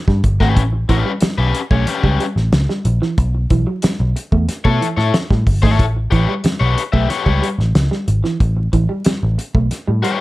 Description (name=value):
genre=funk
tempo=92 BPM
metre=4/4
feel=straight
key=unclear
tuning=A4 = 440 Hz
part: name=electric guitar through a small old amp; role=riff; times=0.1-10.2 s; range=E3 to A3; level=-22 LUFS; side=right 3 dB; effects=warbly pitch drift
part: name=vintage muted picked electric bass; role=bass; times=0.1-10.0 s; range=G1 to B2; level=-16 LUFS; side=equal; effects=none
part: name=warm soul drum kit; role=drums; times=0.1-10.2 s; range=hi-hat, kick drum, snare drum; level=-18 LUFS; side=equal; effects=none
part: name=crunchy overdriven guitar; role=accompaniment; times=0.4-10.2 s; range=C#4 to E5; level=-20 LUFS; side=left 6 dB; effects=none
room=little or no reverb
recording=dark, warm production, vinyl crackle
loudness=-14 LUFS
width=side -18 dB against mid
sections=0.0-10.2 A section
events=none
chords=0.0 A9; 3.2 B9sus4; 5.8 A9